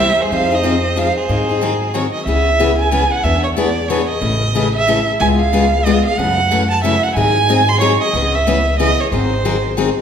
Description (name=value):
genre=acoustic string swing (jazz manouche)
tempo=184 BPM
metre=3/4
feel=swing 62% on 8ths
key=C# minor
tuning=A4 = 440 Hz
part: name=rich violin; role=melody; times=0.0-9.9 s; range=B#4 to B#5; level=-17 LUFS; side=right 4 dB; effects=none
part: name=edgy soprano saxophone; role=second line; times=0.0-2.1 s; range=Ab4 to C5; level=-22 LUFS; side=right 2 dB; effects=none
part: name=picked steel-string acoustic guitar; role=accompaniment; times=0.0-9.9 s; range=C#3 to Ab4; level=-17 LUFS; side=left 4 dB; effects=none
part: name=upright bass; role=bass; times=0.0-9.9 s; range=G#1 to Ab2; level=-20 LUFS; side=equal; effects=none
room=wet recital hall reverb, RT60 1.8 s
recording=recorded in a church or concert hall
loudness=-13 LUFS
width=side -8 dB against mid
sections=0.0-2.3 A section; 2.3-10.0 B section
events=none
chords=0.3 Fm7; 1.3 Ab7; 2.3 C#m7; 3.2 E7; 4.2 Amaj7; 5.2 C#7; 6.2 F#m7; 7.2 G#7; 8.1 C#m7; 9.1 G#7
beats=| 0.30 0.63 0.96 | 1.28 1.61 1.94 | 2.27 2.59 2.92 | 3.25 3.57 3.90 | 4.22 4.55 4.88 | 5.20 5.53 5.86 | 6.18 6.51 6.84 | 7.16 7.49 7.82 | 8.14 8.47 8.79 | 9.12 9.45 9.77